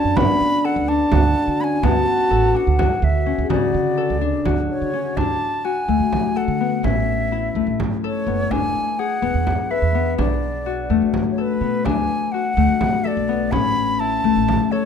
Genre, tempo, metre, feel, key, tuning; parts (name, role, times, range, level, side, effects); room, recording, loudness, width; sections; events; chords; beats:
contemporary instrumental, chamber music in an uneven meter; 252 BPM (eighths); 7/8; straight; D lydian; A4 = 440 Hz
bright wooden flute; melody; 0.0-14.9 s; B4 to B5; -23 LUFS; right 1 dB
mellow French horn; second line; 0.0-5.2 s; D4 to G#4; -21 LUFS; equal
Celtic harp; arpeggios; 0.0-14.9 s; C#3 to B4; -22 LUFS; left 9 dB
upright bass; bass; 0.0-14.6 s; E1 to D3; -23 LUFS; right 3 dB
frame drum; percussion; 0.2-14.7 s; -25 LUFS; right 4 dB
light reverb; close, detailed microphones; -17 LUFS; side -7 dB against mid
0.0-5.2 A section; 5.2-14.9 B section
0.0 D6; 1.8 Bm7; 3.5 Dmaj7; 5.2 D; 6.8 A; 8.5 E7; 10.2 Bm7; 11.9 D; 13.5 A
| 0.17 0.40 0.64 0.88 1.12 1.36 1.59 | 1.83 2.07 2.31 2.55 2.79 3.02 3.26 | 3.50 3.74 3.98 4.22 4.46 4.69 4.93 | 5.17 5.41 5.65 5.88 6.12 6.36 6.60 | 6.84 7.08 7.32 7.55 7.79 8.03 8.27 | 8.51 8.75 8.99 9.23 9.46 9.70 9.94 | 10.18 10.42 10.66 10.90 11.14 11.38 11.61 | 11.85 12.09 12.33 12.57 12.81 13.05 13.29 | 13.53 13.77 14.00 14.24 14.48 14.72